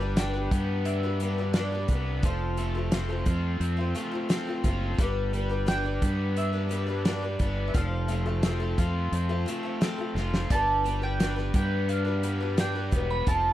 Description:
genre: folk rock and heartland rock.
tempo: 87 BPM.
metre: 4/4.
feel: straight.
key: G mixolydian.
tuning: A4 = 437 Hz.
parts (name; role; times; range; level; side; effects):
picked twelve-string acoustic guitar; accompaniment; 0.0-13.5 s; G2 to B4; -33 LUFS; left 5 dB; none.
crunchy overdriven guitar; riff; 0.0-13.5 s; F3 to F4; -34 LUFS; right 1 dB; none.
fingered electric bass; bass; 0.0-13.5 s; E1 to G2; -29 LUFS; equal; none.
mandolin; melody; 0.2-13.5 s; C5 to B5; -32 LUFS; right 3 dB; none.
loose indie drum kit; drums; 0.2-13.4 s; hi-hat, kick drum, snare drum, splash cymbal; -27 LUFS; equal; none.
room: studio reverb.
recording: dry, close 1970s-style studio recording.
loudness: -25 LUFS.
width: side -13 dB against mid.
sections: 0.0-13.5 A section.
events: drum fill 10.2-10.5.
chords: 0.0 G; 2.2 F; 5.0 G; 7.7 F; 10.5 G.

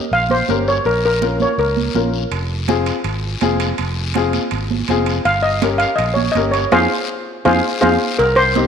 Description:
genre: latin, cumbia.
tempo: 164 BPM.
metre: 4/4.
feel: straight.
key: F minor.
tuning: A4 = 440 Hz.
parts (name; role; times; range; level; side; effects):
steel pan; melody; 0.0-2.1, 5.3-8.7 s; Ab4 to F5; -16 LUFS; equal; none.
clear upright piano; accompaniment; 0.0-8.7 s; C4 to Bb4; -22 LUFS; left 7 dB; none.
fingered electric bass; bass; 0.1-8.7 s; F1 to F2; -22 LUFS; right 1 dB; none.
congas; percussion; 0.1-8.7 s; none; -23 LUFS; right 11 dB; none.
guiro; percussion; 0.1-8.7 s; none; -30 LUFS; left 9 dB; none.
timbales and cowbell; percussion; 2.3-8.7 s; none; -28 LUFS; right 11 dB; none.
room: moderate echo chamber reverb, RT60 1.8 s, studio reverb.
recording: 1960s-style stereo with parts hard left and right.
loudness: -15 LUFS.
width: side -7 dB against mid.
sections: 0.0-8.2 A section.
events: band accent 6.7-8.2; drum fill 7.1-8.2.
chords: 0.0 Gdim; 0.9 Bbm; 2.3 Fm; 5.3 Gdim; 6.7 Fm.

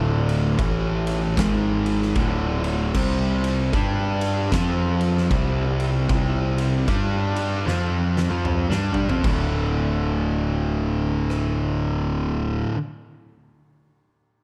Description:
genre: stoner and doom metal.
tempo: 76 BPM.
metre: 4/4.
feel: swing 62% on 8ths.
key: D minor.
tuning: A4 = 441 Hz.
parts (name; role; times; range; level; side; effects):
fuzz guitar; riff; 0.0-12.8 s; D2 to G4; -25 LUFS; equal; distortion.
fuzz picked electric bass; bass; 0.0-12.6 s; D1 to G2; -28 LUFS; equal; overdrive.
oversized low-tuned drum kit; drums; 0.3-11.4 s; crash cymbal, kick drum, ride cymbal, rim click, snare drum, toms; -30 LUFS; equal; none.
room: little or no reverb.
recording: dark, warm production.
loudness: -23 LUFS.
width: mono.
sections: 0.0-9.2 A section; 9.2-12.4 B section.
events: drum fill 7.7-9.2.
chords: 0.0 D5; 0.6 A5; 1.4 G#5; 2.2 D5; 2.9 C5; 3.7 G5; 4.5 F5; 5.3 C5; 6.9 G5; 7.7 C5; 9.2 D5.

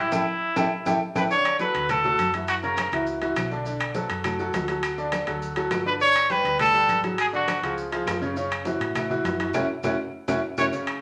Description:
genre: latin, salsa.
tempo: 204 BPM.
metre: 4/4.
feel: straight.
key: D major.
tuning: A4 = 441 Hz.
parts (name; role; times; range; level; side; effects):
bright trumpet; melody; 0.0-3.0, 5.9-7.8, 10.6 s; E4 to C#5; -24 LUFS; equal; none.
bright baby grand piano; accompaniment; 0.0-11.0 s; C#3 to D5; -30 LUFS; equal; none.
hollow-body short-scale fingered electric bass; bass; 0.0-10.7 s; F#1 to A2; -39 LUFS; equal; none.
claves; percussion; 0.1-11.0 s; none; -41 LUFS; equal; none.
congas; percussion; 0.1-11.0 s; none; -37 LUFS; equal; none.
maracas; percussion; 0.1-11.0 s; none; -48 LUFS; equal; none.
timbales; percussion; 0.1-11.0 s; none; -33 LUFS; equal; none.
room: wet large studio reverb, RT60 0.8 s.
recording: none.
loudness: -24 LUFS.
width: mono.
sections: 0.0-1.3 A section; 1.3-10.7 A section.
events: drum fill 0.1-1.3, 9.5-10.7; band accent 0.1-1.3, 9.5-10.7.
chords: 0.1 A5; 1.3 Dmaj7; 2.5 F#7; 3.7 Bm7; 4.8 D; 6.0 G; 7.2 Dmaj7#11/G#; 7.8 C#; 8.4 F#m7; 9.5 F#5.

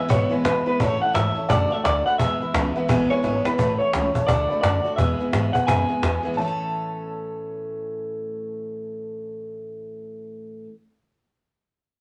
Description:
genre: rockabilly.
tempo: 172 BPM.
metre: 4/4.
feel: swing 62% on 8ths.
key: A major.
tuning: A4 = 442 Hz.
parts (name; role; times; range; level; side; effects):
electric guitar through a small old amp; melody; 0.0-10.6 s; B4 to A5; -26 LUFS; equal; harmonic tremolo.
dark upright piano; accompaniment; 0.0-10.7 s; B4 to B5; -32 LUFS; equal; none.
picked steel-string acoustic guitar; accompaniment; 0.0-10.7 s; E2 to A4; -31 LUFS; equal; none.
upright bass; bass; 0.1-10.6 s; G#1 to B2; -29 LUFS; equal; none.
cajon; drums; 0.1-6.3 s; none; -28 LUFS; equal; none.
room: wet studio reverb, RT60 0.6 s.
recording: none.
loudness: -23 LUFS.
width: mono.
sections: 0.0-3.6 A section; 3.6-6.4 B section; 6.4-9.2 C section.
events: drum fill 3.2-3.6.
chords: 0.0 E; 0.8 A; 1.5 D; 2.2 E; 3.6 A; 4.3 D; 5.0 E; 6.4 A.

